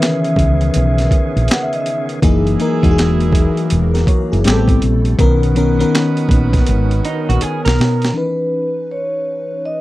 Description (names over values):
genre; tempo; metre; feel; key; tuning
R&B, neo-soul; 81 BPM; 4/4; swing 63% on 16ths; C# dorian; A4 = 440 Hz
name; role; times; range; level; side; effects
vibraphone with soft mallets; melody; 0.0-1.9, 8.2-9.8 s; B4 to F#5; -22 LUFS; equal; tape echo
FM electric piano with soft pad layer; accompaniment; 0.0-9.8 s; D#3 to C#5; -18 LUFS; left 2 dB; chorus
bright tonewheel organ; sustained chords; 0.0-8.1 s; C3 to G#4; -26 LUFS; right 2 dB; slow rotary speaker, overdrive
boom bap sampler-style drum kit; drums; 0.0-8.2 s; handclaps, hi-hat, kick drum, snare drum; -16 LUFS; equal; none
woody fretless electric bass; bass; 0.4-8.1 s; E1 to B2; -15 LUFS; equal; none
warm horn section; stabs; 2.2-7.7 s; G#3 to B4; -26 LUFS; right 6 dB; none
electric guitar through a small old amp; second line; 7.1-8.1 s; D#4 to A#4; -22 LUFS; right 2 dB; wide subtle chorus
room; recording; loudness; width
little or no reverb; dry, close 1970s-style studio recording; -13 LUFS; side -17 dB against mid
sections
0.0-8.2 A section; 8.2-9.8 B section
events
drum fill 6.7-8.2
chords
0.0 C#m9; 2.2 F#13; 4.4 Am9; 5.2 Bmaj9; 8.2 C#m9